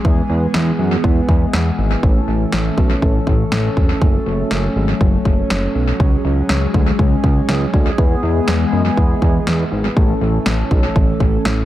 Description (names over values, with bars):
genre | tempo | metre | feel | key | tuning
synth-pop | 121 BPM | 4/4 | straight | unclear | A4 = 439 Hz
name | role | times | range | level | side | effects
chorused pulse-width pad | sustained chords | 0.0-11.7 s | E3 to A4 | -20 LUFS | equal | none
fat analog bass | bass | 0.0-11.6 s | E1 to F#2 | -18 LUFS | equal | none
house drum kit | drums | 0.0-11.6 s | kick drum, snare drum | -17 LUFS | equal | analog delay
room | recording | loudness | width
light reverb | echo-heavy mix | -14 LUFS | side -14 dB against mid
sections
0.0-11.7 A section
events
none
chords
0.0 E; 2.0 A; 4.0 F#m; 6.0 C#sus4; 8.0 E; 10.0 A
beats
| 0.05 0.54 1.04 1.54 | 2.03 2.53 3.02 3.52 | 4.01 4.51 5.01 5.50 | 6.00 6.50 6.99 7.49 | 7.98 8.48 8.97 9.47 | 9.97 10.46 10.96 11.45